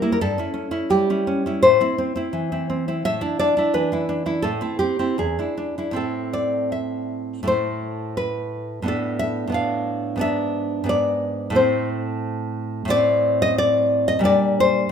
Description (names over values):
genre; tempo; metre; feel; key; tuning
romantic piece for solo classical guitar; 76-92 BPM; 2/4; rubato; A minor; A4 = 440 Hz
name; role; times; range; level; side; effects
nylon-string guitar; solo; 0.0-14.9 s; E2 to F5; -19 LUFS; equal; none
room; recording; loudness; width
light reverb; minimal, uncompressed stereo recording; -19 LUFS; side -7 dB against mid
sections
0.0-7.5 A section; 7.5-14.9 B section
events
none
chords
0.2 A7/G; 1.6 Am; 3.0 E5/A; 4.4 Am; 5.2 E7; 5.9 Am; 8.9 Bm7b5/A; 10.2 E7/G#; 11.6 Am; 12.9 D7(no3)/A; 14.2 Gm/Bb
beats
| 0.18 0.89 | 1.62 2.32 | 3.02 3.71 | 4.43 5.17 | 5.95 6.71 | 7.48 8.17 | 8.87 9.55 | 10.23 10.89 | 11.56 12.23 | 12.90 13.57 | 14.24